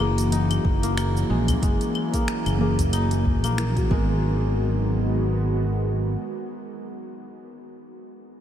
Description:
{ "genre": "organic downtempo", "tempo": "92 BPM", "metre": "4/4", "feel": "swing 56% on 16ths", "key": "G# minor", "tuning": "A4 = 441 Hz", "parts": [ { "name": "muted felt-like synth keys", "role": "accompaniment", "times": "0.0-8.4 s", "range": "E3 to A#4", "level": "-29 LUFS", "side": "left 1 dB", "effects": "chorus, sidechain pumping, ping-pong delay" }, { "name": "warm analog pad", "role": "sustained chords", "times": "0.0-7.6 s", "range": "D#3 to F#4", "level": "-29 LUFS", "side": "right 1 dB", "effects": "wide subtle chorus, sidechain pumping" }, { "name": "kora", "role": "arpeggios", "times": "0.0-6.0 s", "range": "G#3 to D#4", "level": "-32 LUFS", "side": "left 2 dB", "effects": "vintage 12-bit sampler grit, ping-pong delay" }, { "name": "fretless electric bass", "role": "bass", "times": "0.0-6.2 s", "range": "F#1 to A#1", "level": "-23 LUFS", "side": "equal", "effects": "sidechain pumping" }, { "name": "organic electronic drum kit", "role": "drums", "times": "0.0-3.9 s", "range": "claves, finger snaps, hi-hat, shaker", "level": "-34 LUFS", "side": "left 1 dB", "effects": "studio reverb" }, { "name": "electronic kick drum", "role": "drums", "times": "0.6-4.1 s", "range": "none", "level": "-24 LUFS", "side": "equal", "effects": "overdrive, studio reverb" }, { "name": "udu", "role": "percussion", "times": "1.5-3.4 s", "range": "none", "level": "-26 LUFS", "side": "left 1 dB", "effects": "none" } ], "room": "light reverb", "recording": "none", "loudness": "-20 LUFS", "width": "side -10 dB against mid", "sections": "0.0-4.2 A section; 4.2-6.8 B section", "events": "none", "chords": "0.0 F#7; 3.9 G#m7", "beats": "0.32 0.97 | 1.62 2.28 2.93 3.58 | 4.23 4.89 5.54 6.19" }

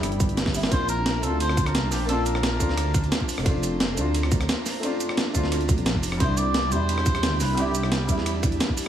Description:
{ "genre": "liquid drum and bass", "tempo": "175 BPM", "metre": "4/4", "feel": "straight", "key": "Bb major", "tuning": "A4 = 440 Hz", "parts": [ { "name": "felt-muted upright piano", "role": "accompaniment", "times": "0.0-8.9 s", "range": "B2 to F4", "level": "-29 LUFS", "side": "left 1 dB", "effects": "tape echo" }, { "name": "airy breathy pad", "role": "sustained chords", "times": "0.0-8.9 s", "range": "D4 to B5", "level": "-32 LUFS", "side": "right 1 dB", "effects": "chorus" }, { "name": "dark detuned saw bass", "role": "bass", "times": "0.0-8.6 s", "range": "F1 to E2", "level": "-26 LUFS", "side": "right 1 dB", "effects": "none" }, { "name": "breakbeat sampler-style drum kit", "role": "drums", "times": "0.0-8.9 s", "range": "cabasa, hi-hat, ride cymbal, rim click, snare drum", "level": "-27 LUFS", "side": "right 1 dB", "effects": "none" }, { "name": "electronic kick drum", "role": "drums", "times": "0.2-8.8 s", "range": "none", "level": "-24 LUFS", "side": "equal", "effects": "none" }, { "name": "trumpet with cup mute", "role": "melody", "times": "0.7-3.3, 6.2-8.2 s", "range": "G4 to D5", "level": "-29 LUFS", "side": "equal", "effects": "tape echo" } ], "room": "light reverb, digital ambience", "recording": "small room ambience", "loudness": "-21 LUFS", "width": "side -10 dB against mid", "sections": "0.0-8.9 A section", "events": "drum fill 0.5", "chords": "0.0 Cmaj9 (rootless); 0.7 Bbmaj9; 6.2 Cmaj9", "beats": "0.03 0.37 | 0.72 1.06 1.40 1.75 | 2.09 2.43 2.77 3.12 | 3.46 3.80 4.14 4.49 | 4.83 5.17 5.52 5.86 | 6.20 6.54 6.89 7.23 | 7.57 7.92 8.26 8.60" }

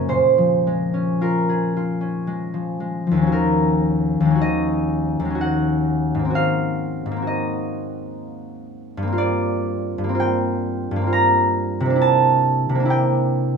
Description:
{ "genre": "classical, solo harp piece", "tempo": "53-68 BPM", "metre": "3/4", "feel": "rubato", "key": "Bb minor, Eb dorian from 3.3 s", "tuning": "A4 = 440 Hz", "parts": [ { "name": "concert harp", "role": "solo", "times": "0.0-13.6 s", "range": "Eb2 to Bb5", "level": "-18 LUFS", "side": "equal", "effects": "none" } ], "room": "light reverb", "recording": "minimal, uncompressed stereo recording", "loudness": "-18 LUFS", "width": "side -6 dB against mid", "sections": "0.0-3.3 A section; 3.3-13.6 B section", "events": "none", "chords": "0.1 Bbm7; 6.3 Ab9; 9.2 Gm7; 12.0 C9", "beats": "| 0.11 1.22 2.27 | 3.33 4.41 5.41 | 6.34 7.28 8.22 | 9.17 10.20 11.11 | 12.02 12.91" }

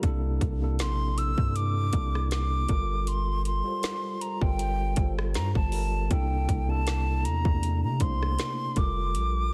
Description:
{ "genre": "contemporary R&B", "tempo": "79 BPM", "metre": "4/4", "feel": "swing 54% on 16ths", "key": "unclear", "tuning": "A4 = 442 Hz", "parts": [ { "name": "mellow tine electric piano", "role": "accompaniment", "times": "0.0-9.5 s", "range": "C3 to C5", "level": "-36 LUFS", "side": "equal", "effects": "none" }, { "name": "long sustained 808-style bass", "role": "bass", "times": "0.0-9.5 s", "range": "F1 to C3", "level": "-30 LUFS", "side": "equal", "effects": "none" }, { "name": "trap drum kit", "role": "drums", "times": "0.0-9.3 s", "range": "hi-hat, kick drum, rim click, snare drum", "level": "-31 LUFS", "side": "equal", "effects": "none" }, { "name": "hollow concert flute", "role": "melody", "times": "0.8-9.5 s", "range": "G5 to E6", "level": "-35 LUFS", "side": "equal", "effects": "digital delay" } ], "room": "digital ambience", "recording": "dense, heavily limited modern master", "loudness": "-27 LUFS", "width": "mono", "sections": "0.0-9.5 A section", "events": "none", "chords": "0.0 C13; 2.7 Gm9; 6.1 C13; 8.8 Gm9", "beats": "| 0.03 0.79 1.55 2.31 | 3.07 3.83 4.59 5.35 | 6.11 6.87 7.63 8.39 | 9.15" }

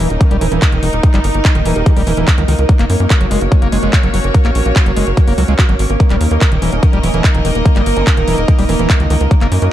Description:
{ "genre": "psychedelic trance", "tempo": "145 BPM", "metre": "4/4", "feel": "straight", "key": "unclear", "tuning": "A4 = 441 Hz", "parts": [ { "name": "pulsing gated texture", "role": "sustained chords", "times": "0.0-9.7 s", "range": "Bb3 to Bb4", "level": "-21 LUFS", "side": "right 2 dB", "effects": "chorus, built-in reverb, sidechain pumping" }, { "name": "overdriven acid bass", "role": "riff", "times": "0.0-9.5 s", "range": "Eb3 to Gb4", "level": "-21 LUFS", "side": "moving between left 6 dB and right 4 dB", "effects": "auto-pan, sidechain pumping, digital delay" }, { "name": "tight sequencer bass", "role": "bass", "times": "0.0-9.7 s", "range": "Eb1 to Gb2", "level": "-16 LUFS", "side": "equal", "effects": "none" }, { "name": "big-room dance drum kit", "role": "drums", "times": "0.0-9.7 s", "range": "handclaps, hi-hat", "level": "-22 LUFS", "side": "equal", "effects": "none" }, { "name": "rich chamber string section", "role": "texture", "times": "0.0-9.7 s", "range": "Db4 to Eb5", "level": "-22 LUFS", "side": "equal", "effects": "sidechain pumping" }, { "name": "vowel-sweep wobble bass", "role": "second line", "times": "0.1-1.9, 6.7-8.1 s", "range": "Db4 to G4", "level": "-30 LUFS", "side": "left 2 dB", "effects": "none" }, { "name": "electronic kick drum", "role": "drums", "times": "0.2-9.4 s", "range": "none", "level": "-11 LUFS", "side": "equal", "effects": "none" } ], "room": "digital ambience", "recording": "dark, warm production", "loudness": "-10 LUFS", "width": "side -12 dB against mid", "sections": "0.0-9.7 A section", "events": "none", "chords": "0.0 Eb5; 2.7 Gb5; 6.0 Eb5", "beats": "0.21 0.62 | 1.03 1.45 1.86 2.28 | 2.69 3.10 3.52 3.93 | 4.34 4.76 5.17 5.59 | 6.00 6.41 6.83 7.24 | 7.66 8.07 8.48 8.90 | 9.31 9.72" }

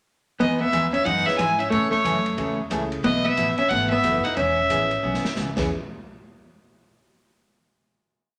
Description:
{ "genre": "country, western swing", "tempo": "181 BPM", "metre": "4/4", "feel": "swing 63% on 8ths", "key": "E major", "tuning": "A4 = 440 Hz", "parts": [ { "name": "clear fiddle", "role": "melody", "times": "0.4-5.3 s", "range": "C#5 to G#5", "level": "-25 LUFS", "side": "equal", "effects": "none" }, { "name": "vintage hollow-body jazz guitar", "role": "second line", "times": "0.4-5.3 s", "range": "A3 to E4", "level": "-27 LUFS", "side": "equal", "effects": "none" }, { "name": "picked steel-string acoustic guitar", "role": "accompaniment", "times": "0.4-5.7 s", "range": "B2 to G#4", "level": "-31 LUFS", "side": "equal", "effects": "none" }, { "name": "upright bass", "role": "bass", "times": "0.4-5.7 s", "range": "E1 to A2", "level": "-35 LUFS", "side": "equal", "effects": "none" }, { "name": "swinging big-band drum kit", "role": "drums", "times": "0.4-5.6 s", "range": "crash cymbal, hi-hat, kick drum, ride cymbal, snare drum", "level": "-37 LUFS", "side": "equal", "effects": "none" }, { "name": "warm upright piano", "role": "accompaniment", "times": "1.3-5.7 s", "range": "G#3 to B4", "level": "-34 LUFS", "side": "equal", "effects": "none" } ], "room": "moderate club reverb, RT60 0.6 s", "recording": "none", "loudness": "-22 LUFS", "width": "mono", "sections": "0.4-5.7 A section; 5.7-7.0 final hit", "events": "drum fill 5.0-5.4", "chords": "0.4 Emaj7; 1.7 Amaj7; 3.0 B7sus4; 4.4 E6; 5.7 N.C.", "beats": "| 0.40 0.72 1.05 1.39 | 1.72 2.05 2.38 2.71 | 3.04 3.37 3.70 4.03 | 4.37 4.70 5.03 5.36" }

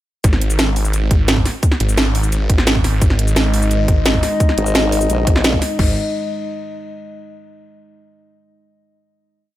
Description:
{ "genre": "dark technical drum and bass", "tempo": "173 BPM", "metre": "4/4", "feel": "straight", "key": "unclear", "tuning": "A4 = 440 Hz", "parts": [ { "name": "snarling distorted saw bass", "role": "bass", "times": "0.2-6.0 s", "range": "G#1", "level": "-17 LUFS", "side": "equal", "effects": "distortion, tube saturation" }, { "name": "drum and bass drum kit", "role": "drums", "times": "0.2-5.9 s", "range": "crash cymbal, hi-hat, shaker, snare drum", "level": "-19 LUFS", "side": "right 1 dB", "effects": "overdrive" }, { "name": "electronic kick drum", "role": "drums", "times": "0.2-5.9 s", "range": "none", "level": "-15 LUFS", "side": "equal", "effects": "overdrive" }, { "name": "dark analog pad", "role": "sustained chords", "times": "3.0-6.0 s", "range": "G#3 to D#5", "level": "-21 LUFS", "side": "left 2 dB", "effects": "chorus, sidechain pumping" }, { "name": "formant-sweep wobble bass", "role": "bass", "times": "4.6-5.6 s", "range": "G#1 to A#1", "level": "-18 LUFS", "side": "equal", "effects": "chorus" } ], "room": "light reverb", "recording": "none", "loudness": "-14 LUFS", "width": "side -14 dB against mid", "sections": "0.2-5.8 drop; 5.8-7.2 final chord", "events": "drop 0.2-5.8", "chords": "0.2 G#5", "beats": "| 0.24 0.59 0.94 1.28 | 1.63 1.98 2.32 2.67 | 3.02 3.36 3.71 4.06 | 4.40 4.75 5.10 5.44 | 5.79" }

